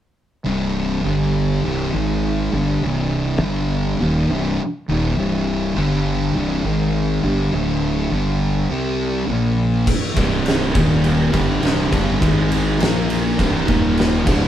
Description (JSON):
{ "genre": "stoner and doom metal", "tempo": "102 BPM", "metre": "4/4", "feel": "straight", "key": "C minor", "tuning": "A4 = 438 Hz", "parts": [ { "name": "thick fuzz guitar", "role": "riff", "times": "0.4-14.5 s", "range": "C2 to C4", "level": "-19 LUFS", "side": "equal", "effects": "distortion" }, { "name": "fuzz fingered electric bass", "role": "bass", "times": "0.5-14.5 s", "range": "C1 to C2", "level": "-23 LUFS", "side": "equal", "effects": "overdrive" }, { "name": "oversized low-tuned drum kit", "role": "drums", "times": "9.9-14.4 s", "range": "crash cymbal, kick drum, ride cymbal, snare drum", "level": "-20 LUFS", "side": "equal", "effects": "none" }, { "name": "tight distorted guitar", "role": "riff", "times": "10.2-14.5 s", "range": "C2 to Bb3", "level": "-25 LUFS", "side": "right 1 dB", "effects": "distortion" } ], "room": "moderate studio reverb, RT60 0.8 s", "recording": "band playing live in one room", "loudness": "-17 LUFS", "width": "side -11 dB against mid", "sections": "0.5-9.9 A section; 9.9-14.5 B section", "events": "none", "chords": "0.5 C5; 1.1 G5; 1.6 C5; 1.9 Ab5; 2.5 C5; 3.4 G5; 4.0 Cm; 5.8 G5; 6.4 C5; 6.6 Ab5; 7.2 G5; 7.5 D5; 8.1 G5; 8.7 C5; 9.3 Bb5; 9.9 C5; 10.8 Eb5; 11.3 C5; 12.2 Ab5; 12.8 Bb5; 13.4 C5; 13.7 Eb5" }